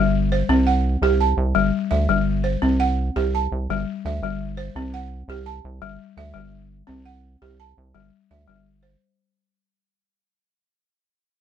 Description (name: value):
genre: west african traditional, West African string and xylophone music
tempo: 113 BPM (dotted quarters)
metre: 12/8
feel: straight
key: C lydian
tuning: A4 = 440 Hz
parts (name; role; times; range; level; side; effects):
- balafon; arpeggios; 0.0-9.2 s; G3 to A5; -22 LUFS; left 1 dB; none
- rubbery square bass; bass; 0.0-9.0 s; G1 to D2; -23 LUFS; right 1 dB; none
room: little or no reverb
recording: close, detailed microphones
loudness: -19 LUFS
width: side -9 dB against mid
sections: 0.0-9.0 A section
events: fade-out 0.0-9.0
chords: 0.5 C5; 1.6 G5; 2.6 C5; 3.7 G5; 4.8 C5; 5.8 G5; 6.9 C5; 8.0 G5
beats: | 0.49 1.03 1.56 2.09 | 2.63 3.16 3.69 4.22 | 4.76 5.29 5.82 6.36 | 6.89 7.42 7.95 8.48